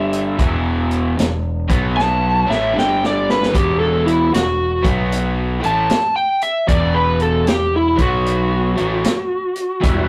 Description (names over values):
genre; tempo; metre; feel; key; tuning
blues rock power trio and southern rock; 76 BPM; 4/4; swing 65% on 8ths; E minor; A4 = 440 Hz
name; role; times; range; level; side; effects
overdriven slide guitar; melody; 0.0-10.1 s; E4 to A5; -20 LUFS; equal; none
crunchy overdriven guitar; riff; 0.0-10.1 s; E2 to B3; -23 LUFS; equal; none
growling picked electric bass; bass; 0.0-10.1 s; E1 to B1; -25 LUFS; equal; overdrive
vintage drum kit; drums; 0.1-10.1 s; hi-hat, kick drum, snare drum; -23 LUFS; equal; none
overdriven tonewheel organ; sustained chords; 9.8-10.1 s; G3 to B4; -24 LUFS; equal; chorus vibrato, fast rotary speaker
room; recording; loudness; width
moderate studio reverb, RT60 0.6 s; rough rehearsal-room recording, tube saturation; -17 LUFS; mono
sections
0.0-10.1 A section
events
drum fill 2.0-3.5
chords
0.4 E5; 1.6 B5; 2.4 A5; 2.8 G5; 3.5 E5; 4.7 B5; 5.5 E5; 7.9 B5; 8.7 Em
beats
| 0.39 1.18 1.96 2.75 | 3.54 4.33 5.12 5.90 | 6.69 7.48 8.26 9.05 | 9.84